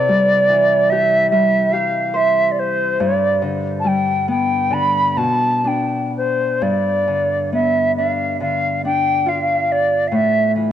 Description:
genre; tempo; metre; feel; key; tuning
celtic folk, Celtic slow air; 60-74 BPM; 4/4; rubato; G mixolydian; A4 = 435 Hz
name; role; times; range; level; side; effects
bright wooden flute; melody; 0.0-10.5 s; C5 to B5; -16 LUFS; right 1 dB; cassette tape
Celtic harp; accompaniment; 0.0-10.7 s; G2 to C5; -20 LUFS; left 2 dB; cassette tape
room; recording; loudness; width
light reverb, small room ambience; home recording on cassette; -15 LUFS; side -10 dB against mid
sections
0.0-6.6 A section; 6.6-10.7 A section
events
none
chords
0.0 C; 3.0 G; 6.6 G7; 10.1 A5

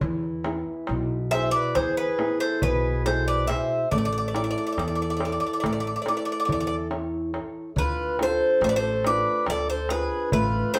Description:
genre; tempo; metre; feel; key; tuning
greek folk, Greek bouzouki band; 140 BPM (eighths); 9/8; straight; D dorian sharp4; A4 = 438 Hz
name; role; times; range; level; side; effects
nylon-string guitar; accompaniment; 0.0-10.8 s; B2 to C#5; -32 LUFS; equal; none
upright bass; bass; 0.0-10.6 s; A1 to E2; -34 LUFS; equal; none
darbuka; percussion; 0.0-10.8 s; none; -35 LUFS; equal; none
Greek bouzouki; melody; 1.3-10.8 s; B4 to E5; -27 LUFS; equal; none
accordion; second line; 1.3-10.8 s; F4 to C5; -35 LUFS; equal; none
room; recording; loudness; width
wet large studio reverb, RT60 0.8 s; band playing live in one room; -25 LUFS; mono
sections
0.0-7.8 A section; 7.8-10.8 B section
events
none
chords
0.0 E; 3.9 A; 7.8 Dm

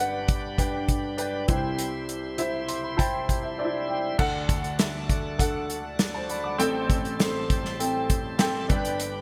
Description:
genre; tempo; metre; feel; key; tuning
piano-driven pop; 100 BPM; 4/4; straight; unclear; A4 = 441 Hz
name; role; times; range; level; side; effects
warm grand piano; accompaniment; 0.0-9.2 s; G1 to D6; -30 LUFS; equal; lush chorus
bright tonewheel organ; sustained chords; 0.0-9.2 s; D2 to C5; -39 LUFS; equal; overdrive, slow rotary speaker
natural country drum kit; drums; 0.3-9.1 s; crash cymbal, hi-hat, kick drum, snare drum; -28 LUFS; equal; none
room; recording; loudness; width
moderate lush hall reverb, RT60 2.5 s; bright 1980s-style digital production; -27 LUFS; mono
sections
0.0-4.2 A section; 4.2-9.2 B section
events
grand piano fill 2.4-4.2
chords
0.0 G; 1.5 C; 4.2 D; 6.6 Am7; 8.7 G

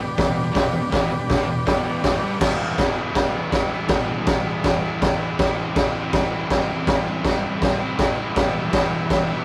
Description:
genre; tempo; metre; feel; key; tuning
garage rock duo or trio; 162 BPM; 4/4; straight; E minor; A4 = 440 Hz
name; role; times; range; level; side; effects
combo organ; sustained chords; 0.0-2.4, 8.4-9.4 s; G4 to E5; -31 LUFS; equal; none
crunchy overdriven guitar; riff; 0.0-9.4 s; E2 to E4; -28 LUFS; equal; none
raw garage drum kit; drums; 0.2-9.2 s; crash cymbal, hi-hat, kick drum, snare drum; -23 LUFS; equal; none
room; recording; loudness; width
moderate studio reverb, RT60 0.6 s; rough rehearsal-room recording, tube saturation; -21 LUFS; mono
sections
0.0-2.4 A section; 2.4-9.4 B section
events
none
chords
0.0 Em; 5.4 C/E; 8.4 Em

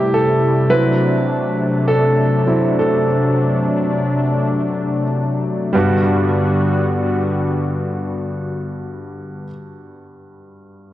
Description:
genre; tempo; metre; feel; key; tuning
pop ballad; 42-54 BPM; 4/4; straight; G major; A4 = 439 Hz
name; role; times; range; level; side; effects
clear concert grand piano; accompaniment; 0.0-10.9 s; G2 to B4; -19 LUFS; right 1 dB; none
warm analog pad; sustained chords; 0.0-9.5 s; C3 to F#4; -18 LUFS; left 1 dB; wide subtle chorus
room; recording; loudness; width
moderate lush hall reverb, RT60 2.8 s; worn, warbling old tape, cassette tape, warbly pitch drift; -15 LUFS; side -14 dB against mid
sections
0.0-5.8 A section; 5.8-10.9 B section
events
slowing down 0.0-5.8; grand piano solo 0.0-5.8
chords
0.0 Cmaj7; 0.7 D7; 5.8 Gmaj7

